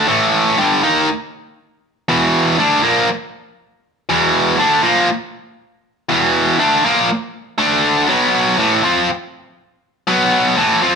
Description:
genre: rock.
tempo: 120 BPM.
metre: 4/4.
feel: straight.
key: unclear.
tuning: A4 = 440 Hz.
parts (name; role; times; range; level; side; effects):
tight distorted guitar; solo; 0.0-11.0 s; E2 to F4; -13 LUFS; equal; distortion.
room: light reverb.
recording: band playing live in one room.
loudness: -13 LUFS.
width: side -6 dB against mid.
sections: 0.0-11.0 A section.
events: none.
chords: 0.1 A5; 2.1 E5; 7.6 D5; 8.1 B5.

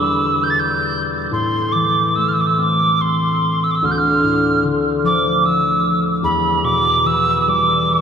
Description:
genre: celtic folk, Celtic slow air.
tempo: 68-76 BPM.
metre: 3/4.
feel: rubato.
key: A minor.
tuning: A4 = 436 Hz.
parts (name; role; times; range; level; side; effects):
wooden whistle; melody; 0.0-8.0 s; B5 to A6; -16 LUFS; right 2 dB; diffuse ambient delay.
concert harp; accompaniment; 0.0-8.0 s; D2 to C4; -19 LUFS; left 2 dB; none.
room: wet cathedral reverb, RT60 7.1 s.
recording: dreamy mix soaked in reverb.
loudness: -14 LUFS.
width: side -7 dB against mid.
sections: 0.0-8.0 A section.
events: none.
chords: 0.0 Em7; 1.3 Am; 3.8 Dm; 6.2 Em.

